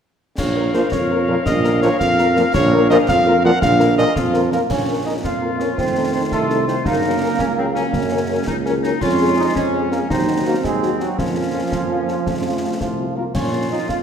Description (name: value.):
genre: military-style march for wind band.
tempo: 111 BPM (dotted quarters).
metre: 6/8.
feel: straight.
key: Bb minor.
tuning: A4 = 439 Hz.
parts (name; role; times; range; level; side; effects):
dark cornet; melody; 0.4-14.0 s; F4 to Gb5; -23 LUFS; equal; none.
bright woodwind section; second line; 0.4-14.0 s; C4 to F5; -25 LUFS; left 3 dB; none.
warm tuba; bass; 0.4-14.0 s; Bb1 to Bb2; -21 LUFS; right 2 dB; none.
concert snare drum, clash cymbals and concert bass drum; drums; 0.4-14.0 s; none; -26 LUFS; left 1 dB; none.
mellow French horn section; accompaniment; 0.6-13.8 s; Gb3 to Bb4; -24 LUFS; left 6 dB; none.
dark trombone section; sustained chords; 0.7-14.0 s; Bb2 to C4; -25 LUFS; right 3 dB; none.
clear euphonium; second line; 4.2-14.0 s; F3 to F4; -24 LUFS; right 4 dB; none.
room: moderate scoring stage reverb, RT60 1.7 s.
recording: minimal, uncompressed stereo recording.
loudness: -16 LUFS.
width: side -7 dB against mid.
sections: 0.4-4.7 A section; 4.7-14.0 B section.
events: none.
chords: 0.4 Bbm; 5.8 F7; 6.9 Gb; 9.0 Db/F; 10.1 Cdim/Eb; 11.2 Bbm/F; 12.3 F; 13.3 Bbm.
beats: | 0.38 0.92 | 1.46 2.00 | 2.54 3.08 | 3.62 4.16 | 4.70 5.24 | 5.78 6.32 | 6.86 7.40 | 7.94 8.48 | 9.02 9.56 | 10.10 10.64 | 11.18 11.72 | 12.26 12.80 | 13.35 13.89.